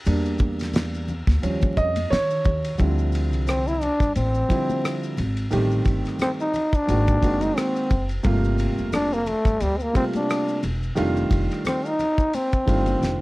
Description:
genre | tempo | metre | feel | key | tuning
hip hop, jazz-hop | 88 BPM | 4/4 | swing 57% on 16ths | D minor | A4 = 440 Hz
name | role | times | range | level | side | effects
dark concert grand piano | accompaniment | 0.1-13.2 s | C3 to Eb5 | -25 LUFS | right 2 dB | none
upright bass | bass | 0.1-13.2 s | E1 to Eb3 | -24 LUFS | equal | none
cloth-damped thuddy drum kit | drums | 0.1-13.2 s | hi-hat, kick drum, ride cymbal, rim click, snare drum | -27 LUFS | equal | none
maracas and congas | percussion | 0.1-13.2 s | none | -36 LUFS | left 3 dB | none
growling trombone | melody | 3.5-13.2 s | G3 to E4 | -23 LUFS | left 1 dB | none
room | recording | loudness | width
light reverb | dark, warm production, vinyl crackle | -20 LUFS | side -20 dB against mid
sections
0.0-2.8 A section; 2.8-13.2 B section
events
grand piano solo 0.0-2.8; drum fill 13.0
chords
0.1 Em7b5; 1.4 Eb9; 2.8 Dm11; 5.5 Am7b5; 6.9 G#9; 8.2 Gm11; 11.0 F13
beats
| 0.07 0.75 1.43 2.11 | 2.79 3.47 4.16 4.84 | 5.52 6.20 6.88 7.57 | 8.25 8.93 9.61 10.29 | 10.97 11.66 12.34 13.02

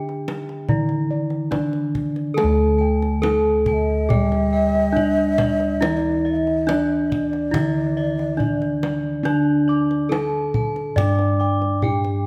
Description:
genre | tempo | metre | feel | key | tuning
Javanese gamelan | 70 BPM | 4/4 | straight | unclear | A4 = 440 Hz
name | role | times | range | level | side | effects
gamelan-type bronze metallophone | melody | 0.0-12.3 s | D4 to D5 | -25 LUFS | equal | none
gamelan-type bronze metallophone | accompaniment | 0.0-12.3 s | D3 to D4 | -29 LUFS | equal | none
gamelan-type bossed gongs | arpeggios | 0.0-12.3 s | D5 to D6 | -35 LUFS | equal | none
gamelan-type bossed gongs | bass | 0.0-12.3 s | D2 to A4-40c | -26 LUFS | equal | none
kendang | percussion | 0.1-12.2 s | none | -29 LUFS | equal | none
gamelan-type bronze metallophone | arpeggios | 2.4-12.2 s | D5 to D6 | -34 LUFS | equal | none
breathy mellow low xiao | second line | 3.6-9.5 s | D5 to G5+24c | -28 LUFS | equal | none
room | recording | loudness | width
moderate recital hall reverb, RT60 1.6 s | none | -20 LUFS | mono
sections
0.0-2.4 A section; 2.4-12.3 B section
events
none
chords
none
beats
0.69 1.52 | 2.37 3.23 4.09 4.95 | 5.81 6.67 7.54 8.40 | 9.26 10.12 10.98 11.84

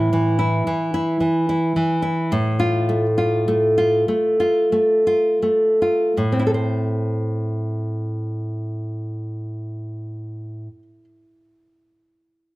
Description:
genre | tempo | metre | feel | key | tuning
romantic piece for solo classical guitar | 51-75 BPM | 4/4 | rubato | A minor | A4 = 440 Hz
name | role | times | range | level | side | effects
nylon-string guitar | solo | 0.0-11.0 s | A2 to C5 | -18 LUFS | equal | none
room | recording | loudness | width
light reverb | close, detailed microphones | -18 LUFS | side -19 dB against mid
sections
0.0-6.2 A section; 6.2-10.2 B section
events
slowing down 0.0-6.2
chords
0.0 A5; 2.3 F/A; 6.2 Am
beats
0.66 1.48 | 2.31 3.17 4.08 5.06 | 6.16 7.15 8.14 9.16

